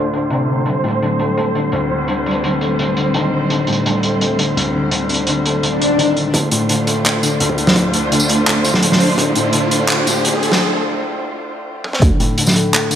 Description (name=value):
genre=half-time drum and bass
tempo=169 BPM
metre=4/4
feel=half-time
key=unclear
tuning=A4 = 441 Hz
part: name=dark studio cello section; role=sustained chords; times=0.0-12.0 s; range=G3 to C5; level=-20 LUFS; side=right 2 dB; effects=sidechain pumping
part: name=felt-muted upright piano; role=arpeggios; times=0.0-13.0 s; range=D2 to D4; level=-18 LUFS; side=left 2 dB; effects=low-pass filter, tape echo
part: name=crunchy breakbeat drum kit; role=drums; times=0.1-13.0 s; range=handclaps, hi-hat, snare drum, tambourine, toms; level=-18 LUFS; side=equal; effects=low-pass filter on hats, low-pass filter on snare, low-pass filter on toms, low-pass filter on perc, low-pass filter on room
part: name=swell and riser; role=sound effects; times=5.7-10.6 s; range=none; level=-22 LUFS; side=left 2 dB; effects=none
part: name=electronic kick drum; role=drums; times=6.3-12.1 s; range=none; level=-21 LUFS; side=right 1 dB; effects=distortion, high-pass filter on kick, high-pass filter on room
part: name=growling 808-style bass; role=bass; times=12.0-12.1 s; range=D2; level=-11 LUFS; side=equal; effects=none
room=moderate echo chamber reverb, RT60 2.2 s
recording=high-pass filter, low-pass filter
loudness=-14 LUFS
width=side -9 dB against mid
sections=0.0-6.3 A section; 6.3-12.0 B section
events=filter sweep on felt piano 0.0-6.3; filter sweep 0.0-6.3; swell 5.7-6.3; build-up 6.3-12.0; riser 6.3-10.6; break 10.6-12.0; drum fill 11.8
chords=0.0 Dm7; 0.7 Cm; 6.3 Dm7; 12.0 D5